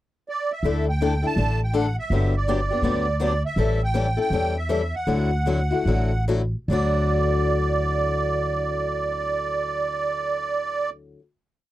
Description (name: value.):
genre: acoustic string swing (jazz manouche).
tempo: 139-164 BPM.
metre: 4/4.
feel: swing 62% on 8ths.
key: D major.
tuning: A4 = 438 Hz.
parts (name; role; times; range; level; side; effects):
musette accordion; melody; 0.3-10.9 s; D5 to A5; -26 LUFS; right 4 dB; none.
picked swing-style acoustic guitar; accompaniment; 0.6-11.2 s; D3 to A4; -26 LUFS; left 5 dB; none.
upright bass; bass; 0.6-11.1 s; G1 to E2; -24 LUFS; equal; none.
room: little or no reverb.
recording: dry, close 1970s-style studio recording.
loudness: -21 LUFS.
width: side -14 dB against mid.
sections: 0.0-0.6 pickup bar; 0.6-6.7 A section; 6.7-10.1 final chord.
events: slowing down 3.6-6.7.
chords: 0.0 N.C.; 0.6 Dsus2; 2.1 Gmaj7; 3.6 A7; 5.1 Dadd9.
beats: 0.28 | 0.65 1.01 1.38 1.74 | 2.11 2.48 2.84 3.21 | 3.58 3.94 4.32 4.69 | 5.07 5.46 5.86 6.28 | 6.70 7.13 7.56 7.99 | 8.42 8.85 9.28 9.71.